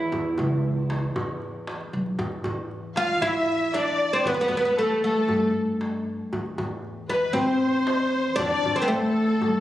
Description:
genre	Arabic maqam ensemble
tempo	116 BPM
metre	4/4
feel	straight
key	E maqam kurd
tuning	A4 = 440 Hz
part	oud	melody	0.0-9.6 s	A3 to F4	-24 LUFS	equal	none
part	rich double bass	drone	0.0-2.2 s	E2	-36 LUFS	equal	none
part	darbuka	percussion	0.0-9.5 s	none	-34 LUFS	equal	none
part	upright bass	bass	0.1-9.6 s	B1 to G2	-32 LUFS	equal	none
part	musette accordion	second line	3.0-9.6 s	A4 to F5	-32 LUFS	left 2 dB	none
part	rich studio violin section	second line	3.0-9.6 s	A4 to F5	-27 LUFS	equal	none
room	wet recital hall reverb, RT60 1.6 s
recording	recorded on a phone in the room, club reverb, compression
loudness	-22 LUFS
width	side -13 dB against mid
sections	0.0-2.2 A section; 2.2-9.6 B section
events	none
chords	none

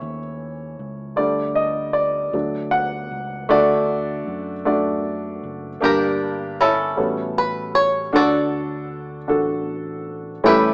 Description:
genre	slow gospel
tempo	52 BPM (dotted quarters)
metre	6/8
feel	straight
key	unclear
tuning	A4 = 439 Hz
part	warm upright piano	accompaniment	0.0-10.7 s	G2 to F#5	-23 LUFS	equal	none
part	fingered electric bass	bass	0.0-10.7 s	F#1 to F#2	-37 LUFS	equal	none
part	bluegrass banjo	melody	5.8-10.7 s	C#4 to D5	-22 LUFS	equal	none
room	light reverb, small room ambience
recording	rough home demo mix, small speaker sound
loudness	-21 LUFS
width	mono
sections	0.0-3.5 A section; 3.5-5.8 B section; 5.8-10.7 C section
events	upright piano solo 0.0-3.5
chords	0.0 A; 1.2 Dsus4; 2.3 D; 5.8 Gm; 7.0 A13; 8.1 D

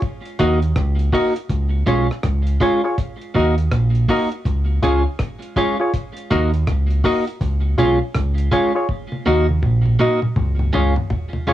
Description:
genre	roots reggae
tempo	81 BPM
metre	4/4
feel	swing 63% on 16ths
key	Eb minor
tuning	A4 = 441 Hz
part	deep reggae drum kit	drums	0.0-11.5 s	hi-hat, kick drum, rim click, toms	-23 LUFS	equal	cassette tape
part	clean electric guitar	accompaniment	0.4-11.5 s	Ab3 to Gb4	-24 LUFS	right 4 dB	cassette tape, tape echo, plate reverb
part	percussive organ stab	stabs	0.4-11.5 s	F4 to Eb5	-20 LUFS	left 2 dB	chorus, cassette tape, plate reverb
part	deep dub fingered electric bass	bass	0.4-10.9 s	Bb1 to Eb2	-18 LUFS	equal	none
room	moderate booth ambience, RT60 0.2 s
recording	home recording on cassette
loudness	-16 LUFS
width	side -13 dB against mid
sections	0.0-11.5 A section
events	drum fill 8.9-11.5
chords	0.0 Ebm; 1.5 Db; 3.0 Ebm; 4.5 Db; 5.9 Ebm; 7.4 Db; 8.9 Ebm; 10.4 Db

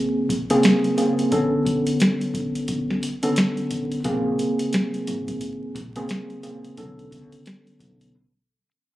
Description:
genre	hip hop, boom-bap hip-hop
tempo	88 BPM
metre	4/4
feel	swing 62% on 16ths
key	unclear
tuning	A4 = 440 Hz
part	mellow tine electric piano	accompaniment	0.0-8.1 s	Db3 to A4	-22 LUFS	equal	medium stereo tremolo, high-pass filter, low-pass filter
part	booming analog drum machine	drums	0.3-8.1 s	hi-hat, kick drum, snare drum	-24 LUFS	equal	none
part	upright bass	bass	4.1-8.1 s	Ab1 to C#2	-38 LUFS	equal	none
room	light reverb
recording	recorded on a phone in the room, club reverb, vinyl crackle, compression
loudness	-20 LUFS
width	side -15 dB against mid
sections	0.0-9.0 A section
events	break 0.0-4.0, 8.1-9.0; fade-out 0.0-9.0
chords	0.0 Bbm9; 1.3 Bm9; 4.0 Bbm9; 6.8 Bm9

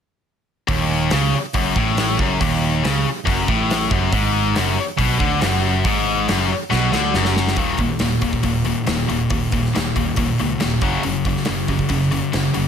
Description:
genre	hard rock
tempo	139 BPM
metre	4/4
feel	straight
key	Eb minor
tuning	A4 = 440 Hz
part	heavy high-gain guitar	riff	0.7-12.7 s	Eb2 to Gb3	-20 LUFS	left 7 dB	distortion
part	sludgy distorted guitar	riff	0.7-12.7 s	Eb2 to Gb3	-24 LUFS	right 10 dB	overdrive
part	picked electric bass	bass	0.7-12.7 s	Eb1 to D2	-25 LUFS	right 1 dB	none
part	gated 80s drum kit	drums	0.7-12.6 s	hi-hat, kick drum, snare drum	-23 LUFS	right 1 dB	none
room	light reverb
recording	none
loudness	-17 LUFS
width	side -8 dB against mid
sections	0.7-7.6 A section; 7.6-12.7 B section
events	drum fill 6.7-7.6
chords	0.7 Ebm; 4.1 Bm6/F#; 7.6 Eb5; 10.8 Gb5

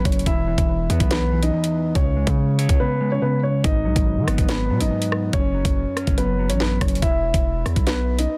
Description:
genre	hip hop, drill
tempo	142 BPM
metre	4/4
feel	half-time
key	unclear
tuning	A4 = 440 Hz
part	mellow electric guitar	accompaniment	0.0-7.0 s	E2 to C#5	-27 LUFS	equal	low-pass filter
part	distorted 808-style bass	bass	0.0-8.3 s	E1 to D#3	-25 LUFS	equal	distortion
part	dark grand piano	melody	0.1-8.4 s	B3 to E5	-27 LUFS	equal	low-pass filter, tape echo
part	drill drum kit	drums	0.1-8.3 s	hi-hat, kick drum, rim click, snare drum	-24 LUFS	equal	none
room	digital ambience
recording	dense, heavily limited modern master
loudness	-20 LUFS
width	mono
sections	0.0-8.4 A section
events	silent gap 2.8-3.6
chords	0.3 E5; 2.0 C#5; 3.6 G#m7; 5.3 F#m; 7.0 E5

